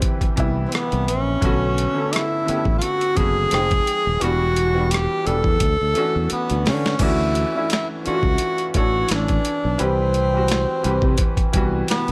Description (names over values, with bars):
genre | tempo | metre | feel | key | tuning
R&B, neo-soul | 86 BPM | 4/4 | swing 55% on 16ths | D major | A4 = 439 Hz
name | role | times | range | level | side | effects
breathy tenor saxophone | melody | 0.0-12.1 s | B3 to A4 | -24 LUFS | equal | none
bright grand piano | accompaniment | 0.0-12.1 s | C3 to G5 | -28 LUFS | equal | none
boom bap sampler-style drum kit | drums | 0.0-12.1 s | crash cymbal, finger snaps, hi-hat, kick drum, rim click, snare drum | -24 LUFS | equal | overdrive
fingered electric bass | bass | 0.4-12.1 s | Eb1 to D3 | -25 LUFS | equal | none
room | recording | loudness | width
digital ambience | lossy compression artefacts | -20 LUFS | mono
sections
0.0-7.0 A section; 7.0-12.1 A section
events
drum fill 5.6-7.0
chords
0.0 Cmaj7; 1.4 Bm9; 3.5 Fm9; 4.2 Em9; 5.6 Dmaj9; 9.8 Cmaj7